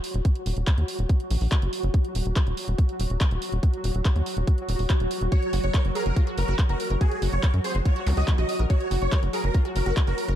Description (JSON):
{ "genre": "psychedelic trance", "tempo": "142 BPM", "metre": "4/4", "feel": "straight", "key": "Eb minor", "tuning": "A4 = 441 Hz", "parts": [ { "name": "pulsing gated texture", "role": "sustained chords", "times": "0.0-10.4 s", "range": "Gb3 to Gb4", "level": "-31 LUFS", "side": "equal", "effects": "chorus, built-in reverb, vintage 12-bit sampler grit, sidechain pumping" }, { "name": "drum and bass drum kit", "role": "drums", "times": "0.0-10.4 s", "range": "handclaps, hi-hat", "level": "-34 LUFS", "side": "right 1 dB", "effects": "overdrive" }, { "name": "tight sequencer bass", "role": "bass", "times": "0.1-10.3 s", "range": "Eb1 to Gb2", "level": "-24 LUFS", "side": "equal", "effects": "none" }, { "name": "electronic kick drum", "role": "drums", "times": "0.2-10.1 s", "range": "none", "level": "-21 LUFS", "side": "equal", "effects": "overdrive" }, { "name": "dense compressed supersaw", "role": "melody", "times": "5.3-10.3 s", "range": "Ab4 to Eb5", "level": "-31 LUFS", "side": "equal", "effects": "phaser, sidechain pumping, tape echo" }, { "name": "wide unison pluck", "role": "riff", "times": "5.3-10.3 s", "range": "F4 to Bb4", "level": "-36 LUFS", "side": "moving between left 3 dB and right 4 dB", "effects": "auto-pan, cassette tape, sidechain pumping, tape echo" }, { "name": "zap", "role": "sound effects", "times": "8.1-8.2 s", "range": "none", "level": "-39 LUFS", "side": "equal", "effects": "none" } ], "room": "little or no reverb", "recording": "dark, warm production", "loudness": "-22 LUFS", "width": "side -11 dB against mid", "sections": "0.0-10.4 A section", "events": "none", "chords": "0.0 Eb5; 5.3 Gb5" }